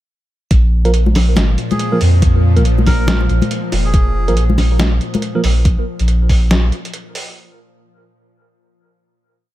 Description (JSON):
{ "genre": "deep dubstep", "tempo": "140 BPM", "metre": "4/4", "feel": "swing 60% on 16ths, half-time", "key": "unclear", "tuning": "A4 = 439 Hz", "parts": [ { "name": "bowed-like drone", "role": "sustained chords", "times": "1.1-5.7 s", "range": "Bb2 to F3", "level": "-23 LUFS", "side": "left 1 dB", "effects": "built-in reverb" }, { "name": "soft dub sub bass", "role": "bass", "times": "0.5-6.7 s", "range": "F1 to F2", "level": "-13 LUFS", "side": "equal", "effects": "none" }, { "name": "electronic kick drum", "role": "drums", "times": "0.5-6.4 s", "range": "none", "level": "-13 LUFS", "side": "equal", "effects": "none" }, { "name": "trip hop sampler-style drum kit", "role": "drums", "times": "0.5-7.3 s", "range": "hi-hat, snare drum", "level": "-22 LUFS", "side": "right 1 dB", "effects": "overdrive" }, { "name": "tine electric piano", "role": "stabs", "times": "0.9-5.4 s", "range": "F3 to Bb4", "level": "-21 LUFS", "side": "right 2 dB", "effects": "phaser, dub echo" }, { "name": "bongos and congas", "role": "percussion", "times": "1.1-5.2 s", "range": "none", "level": "-20 LUFS", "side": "left 2 dB", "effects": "none" }, { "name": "melodica", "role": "melody", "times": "1.7-4.4 s", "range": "Ab4 to Bb4", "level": "-27 LUFS", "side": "right 2 dB", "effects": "dub echo" } ], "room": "digital ambience", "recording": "none", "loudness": "-12 LUFS", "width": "side -15 dB against mid", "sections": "0.5-7.4 drop", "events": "drop 0.5-7.4", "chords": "0.5 Bb5" }